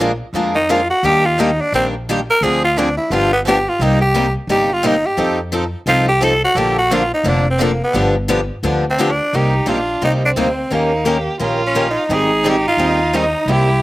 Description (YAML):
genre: acoustic string swing (jazz manouche)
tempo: 174 BPM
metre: 4/4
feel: swing 60% on 8ths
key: C minor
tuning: A4 = 440 Hz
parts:
  - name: picked steel-string acoustic guitar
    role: accompaniment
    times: 0.0-13.7 s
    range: C3 to Bb4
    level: -20 LUFS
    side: left 4 dB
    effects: slapback echo
  - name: picked swing-style acoustic guitar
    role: accompaniment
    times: 0.0-13.7 s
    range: C3 to Bb4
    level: -23 LUFS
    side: right 4 dB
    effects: slapback echo
  - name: upright bass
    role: bass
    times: 0.0-13.8 s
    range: F1 to F2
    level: -21 LUFS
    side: equal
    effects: none
  - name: growling tenor saxophone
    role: melody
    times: 0.6-13.8 s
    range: Bb3 to Bb4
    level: -16 LUFS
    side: equal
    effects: slapback echo
  - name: rich violin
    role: second line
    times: 9.3-13.8 s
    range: C4 to G4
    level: -22 LUFS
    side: right 2 dB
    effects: slapback echo
room: little or no reverb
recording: recorded outdoors, with no room sound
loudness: -14 LUFS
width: side -17 dB against mid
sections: 0.0-9.3 A section; 9.3-13.8 B section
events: tenor saxophone solo 0.0-9.3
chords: 0.0 Bb7; 1.0 Ebmaj7; 2.4 Dm7b5; 3.1 G7; 3.8 Cm7; 5.2 F7; 6.6 Bbmaj7; 7.9 G7; 9.3 Cm7; 10.7 Eb7; 12.1 Abmaj7